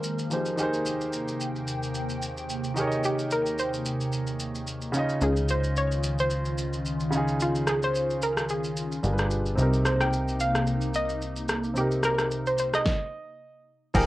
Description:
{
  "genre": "amapiano",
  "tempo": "110 BPM",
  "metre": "4/4",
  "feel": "swing 55% on 16ths",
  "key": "unclear",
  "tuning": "A4 = 439 Hz",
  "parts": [
    { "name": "hollow square pluck", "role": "melody", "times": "0.0-13.5 s", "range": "F4 to G5", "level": "-28 LUFS", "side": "equal", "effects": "chorus, slapback echo" },
    { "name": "warm grand piano", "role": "accompaniment", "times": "0.0-14.1 s", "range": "C3 to Eb5", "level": "-30 LUFS", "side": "right 1 dB", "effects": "none" },
    { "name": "hollow soft pad", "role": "sustained chords", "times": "0.0-14.1 s", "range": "Eb2 to G5", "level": "-32 LUFS", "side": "equal", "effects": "ensemble chorus, sidechain pumping" },
    { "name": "deep house drum kit", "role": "drums", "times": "0.0-14.1 s", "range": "crash cymbal, kick drum, rim click, shaker, snare drum", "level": "-32 LUFS", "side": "equal", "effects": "none" },
    { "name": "plucky analog bass", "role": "bass", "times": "5.2-12.8 s", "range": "G1 to Db2", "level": "-30 LUFS", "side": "equal", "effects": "none" },
    { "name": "percussive organ stab", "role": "stabs", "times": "13.9-14.1 s", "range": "Ab4 to G5", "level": "-26 LUFS", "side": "left 1 dB", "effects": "chorus" },
    { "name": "tight log drum bass", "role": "bass", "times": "13.9-14.1 s", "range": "F1", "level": "-26 LUFS", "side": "equal", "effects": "none" }
  ],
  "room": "little or no reverb",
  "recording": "worn, warbling old tape, cassette tape, warbly pitch drift",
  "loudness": "-24 LUFS",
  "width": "side -17 dB against mid",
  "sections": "0.0-13.9 A section",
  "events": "stop 12.9-13.9",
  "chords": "0.0 Fm11; 0.6 Abmaj9/Eb; 4.9 Dbmaj9; 9.0 G7b9; 9.6 Cm7"
}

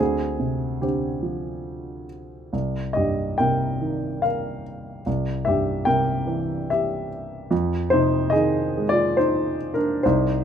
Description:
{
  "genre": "classical, lyrical solo piano",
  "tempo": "72 BPM",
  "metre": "3/4",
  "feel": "uneven beats, rubato",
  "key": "C minor",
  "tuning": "A4 = 441 Hz",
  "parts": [
    { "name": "dark baby grand piano", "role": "solo", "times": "0.0-10.4 s", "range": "C2 to G5", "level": "-21 LUFS", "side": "equal", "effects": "none" }
  ],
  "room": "light reverb",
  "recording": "close, detailed microphones",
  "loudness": "-21 LUFS",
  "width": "side -8 dB against mid",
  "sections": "0.0-10.4 A section",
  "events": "none",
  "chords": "0.0 Dm7b5; 2.5 Cm7; 5.1 C7; 7.5 Fm7"
}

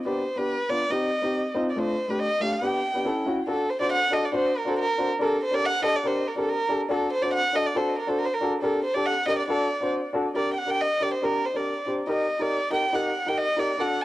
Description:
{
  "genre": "klezmer",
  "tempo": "140 BPM",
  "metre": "2/4",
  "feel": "straight",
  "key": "D phrygian dominant from 3.5 s",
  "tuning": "A4 = 435 Hz",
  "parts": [
    { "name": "rich violin", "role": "melody", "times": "0.1-14.0 s", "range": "A4 to A5", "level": "-25 LUFS", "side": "right 1 dB", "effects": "analog delay" },
    { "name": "warm upright piano", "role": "accompaniment", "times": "0.1-14.0 s", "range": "A3 to C5", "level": "-26 LUFS", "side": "left 1 dB", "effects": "none" }
  ],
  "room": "light reverb",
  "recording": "dry, gritty hardware recording",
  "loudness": "-23 LUFS",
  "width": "side -16 dB against mid",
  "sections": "0.0-3.5 A section; 3.5-10.4 B section; 10.4-14.0 C section",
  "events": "none",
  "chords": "0.1 G; 0.9 Cm; 1.8 Dm; 2.6 G; 3.1 A7; 3.5 D; 5.2 Gm/D; 6.9 D; 8.6 Gm/D; 9.5 D; 10.4 Gm; 12.1 Eb"
}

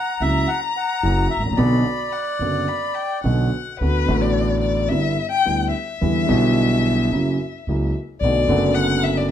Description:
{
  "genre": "tango",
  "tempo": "109 BPM",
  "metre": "4/4",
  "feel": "rubato",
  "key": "B minor, D major from 3.8 s",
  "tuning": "A4 = 440 Hz",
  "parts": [
    { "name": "bandoneon", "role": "melody", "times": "0.0-3.2 s", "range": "D5 to F#5", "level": "-25 LUFS", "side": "right 1 dB", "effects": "none" },
    { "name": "warm violin", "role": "second line", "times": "0.0-9.3 s", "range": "B4 to B5", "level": "-24 LUFS", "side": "left 6 dB", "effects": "none" },
    { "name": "warm concert grand piano", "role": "accompaniment", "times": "0.2-9.3 s", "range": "F#1 to F#4", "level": "-20 LUFS", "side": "right 1 dB", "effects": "none" },
    { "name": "upright bass", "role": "bass", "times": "0.2-9.3 s", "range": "F#1 to E2", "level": "-23 LUFS", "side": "right 1 dB", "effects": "none" }
  ],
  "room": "moderate large studio reverb, RT60 0.9 s",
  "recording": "none",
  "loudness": "-18 LUFS",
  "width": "side -10 dB against mid",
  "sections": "0.0-3.8 A section; 3.8-9.3 B section",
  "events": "violin solo 3.8-9.3",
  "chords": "0.0 F#7; 1.6 Bm; 3.8 D6; 4.9 G6; 6.0 Em7; 7.1 F#7; 8.2 Bm7"
}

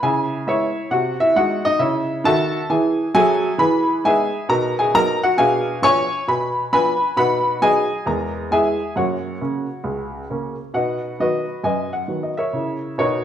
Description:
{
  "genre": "jazz, stride piano",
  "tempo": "134 BPM",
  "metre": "4/4",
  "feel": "swing 65% on 8ths",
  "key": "B major from 3.6 s",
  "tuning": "A4 = 438 Hz",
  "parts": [
    { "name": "clear upright piano", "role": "solo", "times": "0.0-13.2 s", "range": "C#2 to C#6", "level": "-17 LUFS", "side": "equal", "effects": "none" }
  ],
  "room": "wet large studio reverb, RT60 1.2 s",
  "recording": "band playing live in one room",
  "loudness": "-17 LUFS",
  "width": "side -10 dB against mid",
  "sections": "0.0-10.7 A section; 10.7-13.2 B section",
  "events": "none",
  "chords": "0.0 C#m7; 0.9 G#7/B#; 1.8 C#m; 3.6 Emaj7; 4.5 B; 5.4 Bdim7; 7.2 B; 8.1 E; 9.0 F#; 10.7 B; 12.5 F#7"
}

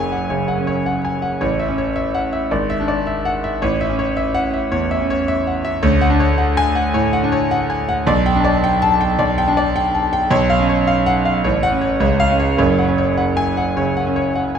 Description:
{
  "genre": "classical, virtuoso piano study",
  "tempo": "107 BPM",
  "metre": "4/4",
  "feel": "rubato",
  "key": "F# minor",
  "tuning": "A4 = 436 Hz",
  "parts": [
    { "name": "warm concert grand piano", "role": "solo", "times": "0.0-14.6 s", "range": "F#1 to A5", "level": "-15 LUFS", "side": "equal", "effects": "none" }
  ],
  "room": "wet recital hall reverb, RT60 1.7 s",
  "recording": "minimal, uncompressed stereo recording",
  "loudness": "-15 LUFS",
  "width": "side -7 dB against mid",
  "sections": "0.0-14.6 A section",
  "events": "none",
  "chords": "0.0 F#5; 1.4 A; 2.5 E7/G#; 3.6 A; 5.8 Dmaj7; 8.1 G/B; 10.3 C#7/B; 11.4 F#m/A; 12.0 C#; 12.6 F#5"
}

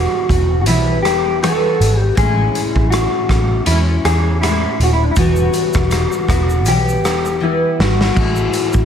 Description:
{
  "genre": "indie pop, bedroom pop",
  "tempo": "80 BPM",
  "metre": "4/4",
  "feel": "swing 55% on 16ths",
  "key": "A major",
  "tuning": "A4 = 437 Hz",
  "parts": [
    { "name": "mellow electric guitar", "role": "melody", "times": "0.0-8.8 s", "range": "D4 to A4", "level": "-18 LUFS", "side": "left 1 dB", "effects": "wide subtle chorus" },
    { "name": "picked steel-string acoustic guitar", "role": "accompaniment", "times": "0.0-8.8 s", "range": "A2 to F#4", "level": "-20 LUFS", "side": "left 2 dB", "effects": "analog chorus, vibrato effect" },
    { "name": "vintage muted picked electric bass", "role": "bass", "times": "0.0-8.8 s", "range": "D#1 to E2", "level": "-17 LUFS", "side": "right 1 dB", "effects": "none" },
    { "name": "raw garage drum kit", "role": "drums", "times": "0.3-8.8 s", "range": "crash cymbal, hi-hat, kick drum, rim click, shaker, snare drum", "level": "-19 LUFS", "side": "equal", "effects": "none" }
  ],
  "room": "light reverb, small room reverb",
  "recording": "none",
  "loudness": "-13 LUFS",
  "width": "side -8 dB against mid",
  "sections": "0.0-8.2 A section",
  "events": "drum fill 7.4-8.2",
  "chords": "0.0 Emadd9; 2.2 Amaj7; 5.2 Emadd9; 8.2 Amaj7(no3)"
}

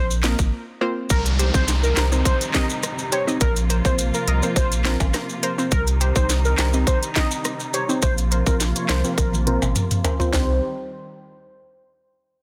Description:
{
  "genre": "dancehall",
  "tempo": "104 BPM",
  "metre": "4/4",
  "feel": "straight",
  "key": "C minor",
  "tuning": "A4 = 439 Hz",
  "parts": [
    { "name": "warm velvety synth lead", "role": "melody", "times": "0.0-10.6 s", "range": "Bb4 to Eb5", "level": "-30 LUFS", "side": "equal", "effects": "chorus, low-pass filter, digital delay" },
    { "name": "warm sub bass", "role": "bass", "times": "0.0-10.6 s", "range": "Ab1 to C2", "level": "-24 LUFS", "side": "equal", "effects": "none" },
    { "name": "maracas and timbales", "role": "percussion", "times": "0.1-10.6 s", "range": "none", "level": "-32 LUFS", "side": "equal", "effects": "none" },
    { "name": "analog pluck", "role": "accompaniment", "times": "0.2-10.6 s", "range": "Bb3 to Eb5", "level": "-30 LUFS", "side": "equal", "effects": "chorus, sidechain pumping, low-pass filter" },
    { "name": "island pop drum kit", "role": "drums", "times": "0.2-10.5 s", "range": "handclaps, hi-hat, kick drum, rim click, snare drum, toms", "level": "-24 LUFS", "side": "equal", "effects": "overdrive" },
    { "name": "muted studio string section", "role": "sustained chords", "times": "1.1-10.6 s", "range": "C3 to G4", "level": "-32 LUFS", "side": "equal", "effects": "sidechain pumping, low-pass filter" },
    { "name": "downlifter", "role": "sound effects", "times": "1.2-5.7 s", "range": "none", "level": "-34 LUFS", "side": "equal", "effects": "none" }
  ],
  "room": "digital ambience",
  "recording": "dense, heavily limited modern master",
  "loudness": "-21 LUFS",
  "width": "mono",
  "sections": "0.0-1.1 A section; 1.1-10.3 B section; 10.3-12.4 C section",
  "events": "break 0.5-1.1; filter sweep 1.1-10.3; drum fill 9.2-10.3",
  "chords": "0.0 Bbsus2; 1.1 Cm; 3.4 Bbsus2; 5.7 Cm; 8.0 Bbsus2; 10.3 Cm"
}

